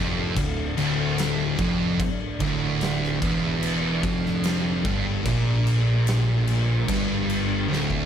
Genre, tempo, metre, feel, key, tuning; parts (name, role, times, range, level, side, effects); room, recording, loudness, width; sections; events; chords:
stoner and doom metal; 74 BPM; 4/4; straight; D minor; A4 = 440 Hz
string machine, violins; sustained chords; 0.0-8.1 s; D3 to D4; -38 LUFS; equal
sludgy distorted guitar; riff; 0.0-8.1 s; D2 to Bb2; -30 LUFS; left 1 dB; overdrive
thick fuzz guitar; riff; 0.0-8.1 s; D2 to Bb2; -27 LUFS; left 5 dB; distortion
thick fuzz guitar; riff; 0.0-8.1 s; D2 to Bb2; -26 LUFS; right 6 dB; distortion
fuzz picked electric bass; bass; 0.0-8.1 s; D1 to Bb1; -31 LUFS; equal; overdrive
oversized low-tuned drum kit; drums; 0.4-8.1 s; crash cymbal, kick drum, snare drum; -29 LUFS; equal
light reverb, small room ambience; -21 LUFS; side -8 dB against mid
0.0-8.1 A section
drum fill 7.7-8.1
0.0 Dm